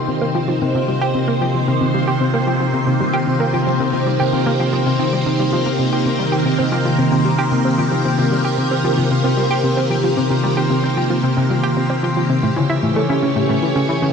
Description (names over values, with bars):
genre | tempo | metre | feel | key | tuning
ambient, sequencer-driven space music | 113 BPM | 4/4 | straight | C minor | A4 = 441 Hz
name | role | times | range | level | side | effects
phased string machine | sustained chords | 0.0-14.1 s | Eb3 to C#5 | -19 LUFS | right 2 dB | ensemble chorus, phaser
concert harp | arpeggios | 0.0-14.1 s | C3 to C#5 | -20 LUFS | left 3 dB | auto-pan, low-pass filter, ping-pong delay
analog pluck | riff | 0.1-14.1 s | A2 to G4 | -21 LUFS | right 1 dB | chorus, ping-pong delay
room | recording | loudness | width
wet huge ambient reverb, RT60 8.4 s | none | -15 LUFS | side -6 dB against mid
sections
0.0-14.1 A section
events
filter sweep on harp 0.0-14.1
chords
0.0 Cm7; 12.4 A7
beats
0.22 0.75 1.28 | 1.81 2.34 2.87 3.40 | 3.93 4.46 5.00 5.53 | 6.06 6.59 7.12 7.65 | 8.18 8.71 9.24 9.77 | 10.30 10.84 11.37 11.90 | 12.43 12.96 13.49 14.02